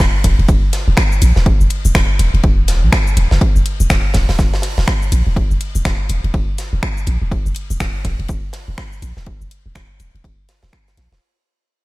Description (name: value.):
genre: minimal techno.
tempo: 123 BPM.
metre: 4/4.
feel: swing 60% on 16ths.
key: unclear.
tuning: A4 = 440 Hz.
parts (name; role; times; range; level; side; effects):
punchy sub bass; bass; 0.0-11.2 s; Eb1 to Bb1; -15 LUFS; equal; sidechain pumping.
electronic kick drum; drums; 0.0-10.8 s; none; -17 LUFS; equal; studio reverb.
house drum kit; drums; 0.0-11.1 s; finger snaps, hi-hat, shaker; -24 LUFS; equal; studio reverb.
tight metal drum kit; drums; 0.0-11.2 s; hi-hat, ride cymbal, snare drum; -28 LUFS; equal; sidechain pumping on hats, high-pass filter on hats, studio reverb, sidechain pumping on cymbals, high-pass filter on cymbals, high-pass filter on snare, high-pass filter on room.
room: studio reverb.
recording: none.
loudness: -13 LUFS.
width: side -21 dB against mid.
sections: 0.0-11.2 A section.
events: drop 0.0-11.2; fade-out 3.4-11.2.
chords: none.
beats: 0.00 0.49 0.97 | 1.46 1.95 2.44 2.92 | 3.41 3.90 4.39 4.88 | 5.36 5.85 6.34 6.83 | 7.32 7.80 8.29 8.78 | 9.27 9.76 10.24 10.73.